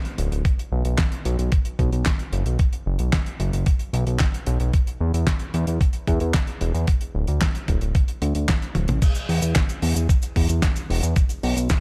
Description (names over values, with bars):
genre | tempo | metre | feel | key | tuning
italo disco | 112 BPM | 4/4 | straight | unclear | A4 = 439 Hz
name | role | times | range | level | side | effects
damped 70s drum kit | drums | 0.1-11.8 s | cabasa, crash cymbal, handclaps, hi-hat, snare drum, toms | -30 LUFS | equal | studio reverb
fat analog bass | bass | 0.2-11.7 s | D1 to E2 | -24 LUFS | equal | none
electronic kick drum | drums | 0.5-11.8 s | none | -23 LUFS | equal | studio reverb
room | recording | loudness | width
little or no reverb | dark, warm production | -22 LUFS | mono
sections
0.0-9.0 A section; 9.0-11.8 B section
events
drum fill 8.8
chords
none